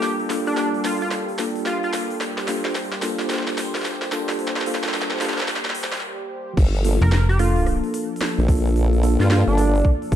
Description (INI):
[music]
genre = glitch hop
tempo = 110 BPM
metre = 4/4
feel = swing 62% on 16ths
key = G minor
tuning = A4 = 440 Hz
[part]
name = sync lead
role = melody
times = 0.0-1.9, 7.0-9.8 s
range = D4 to Bb4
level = -26 LUFS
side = right 1 dB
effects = chorus, ping-pong delay
[part]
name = warm analog pad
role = sustained chords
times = 0.0-10.2 s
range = F3 to C5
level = -30 LUFS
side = right 1 dB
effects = chorus, sidechain pumping
[part]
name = mellow tine electric piano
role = stabs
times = 0.0-10.2 s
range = Bb3 to A4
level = -26 LUFS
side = equal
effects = medium stereo tremolo, sidechain pumping, low-pass filter, ping-pong delay
[part]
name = drum and bass drum kit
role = drums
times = 0.0-10.2 s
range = crash cymbal, hi-hat, rim click, snare drum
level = -27 LUFS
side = equal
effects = high-pass filter on snare, studio reverb, high-pass filter on hats, high-pass filter on cymbals
[part]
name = formant-sweep wobble bass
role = bass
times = 6.6-10.2 s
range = G1 to G2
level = -18 LUFS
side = equal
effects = chorus
[part]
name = electronic kick drum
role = drums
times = 6.6-10.2 s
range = none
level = -17 LUFS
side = equal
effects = studio reverb
[part]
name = slap-like FM bass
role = bass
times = 7.0-7.8 s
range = F1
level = -17 LUFS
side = equal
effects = none
[sound]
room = moderate plate reverb, RT60 1.5 s, digital ambience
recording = dark, warm production, high-pass filter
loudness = -19 LUFS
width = side -10 dB against mid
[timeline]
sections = 0.0-6.6 A section; 6.6-10.2 B section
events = build-up 0.0-6.6; drum fill 0.0-6.0; filter sweep on tine electric piano 0.0-6.6; filter sweep 0.0-6.6; break 6.0-6.6; drop 6.6-10.2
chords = 0.0 Gm9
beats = | 0.03 0.57 1.12 1.67 | 2.21 2.76 3.30 3.85 | 4.39 4.94 5.48 6.03 | 6.58 7.12 7.67 8.21 | 8.76 9.30 9.85